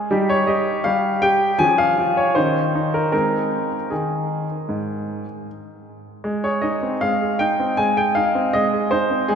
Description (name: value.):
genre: classical-period piano sonatina.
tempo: 78 BPM.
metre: 4/4.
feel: straight.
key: Ab major.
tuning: A4 = 440 Hz.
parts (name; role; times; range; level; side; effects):
clear baby grand piano; solo; 0.0-9.4 s; Ab2 to Ab5; -18 LUFS; equal; none.
room: wet cathedral reverb, RT60 4.5 s.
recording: recorded in a church or concert hall.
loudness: -18 LUFS.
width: side -7 dB against mid.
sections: 0.0-6.2 A section; 6.2-9.4 B section.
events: none.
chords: 0.1 Eb/G; 1.6 Db/F; 2.4 Bbmadd11/Eb; 3.1 Ab.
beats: | 0.10 0.85 1.60 2.36 | 3.13 3.91 4.69 5.46 | 6.25 7.01 7.77 8.53 | 9.29.